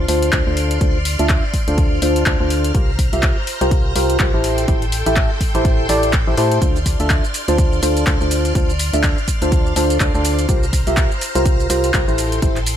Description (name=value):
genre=piano house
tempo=124 BPM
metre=4/4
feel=swing 58% on 16ths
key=D minor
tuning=A4 = 440 Hz
part: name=string machine, violins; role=sustained chords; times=0.0-12.8 s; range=A4 to F6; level=-27 LUFS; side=equal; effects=ensemble chorus, sidechain pumping
part: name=percussive organ stab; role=riff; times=0.0-12.6 s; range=D4 to E5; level=-20 LUFS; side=equal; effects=analog chorus, sidechain pumping, ping-pong delay
part: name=organ-like FM bass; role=bass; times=0.0-12.8 s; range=A1 to A2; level=-20 LUFS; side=equal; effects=sidechain pumping
part: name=punchy analog drum machine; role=drums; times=0.1-12.8 s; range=handclaps, hi-hat, shaker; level=-23 LUFS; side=left 1 dB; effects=overdrive
part: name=electronic kick drum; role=drums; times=0.3-12.5 s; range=none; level=-18 LUFS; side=equal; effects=none
room=little or no reverb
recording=none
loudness=-14 LUFS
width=side -10 dB against mid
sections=0.0-12.8 A section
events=none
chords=0.0 Dm7; 2.7 C7sus4; 4.4 Am7; 6.6 Dm7; 10.5 C7sus4; 12.2 Am7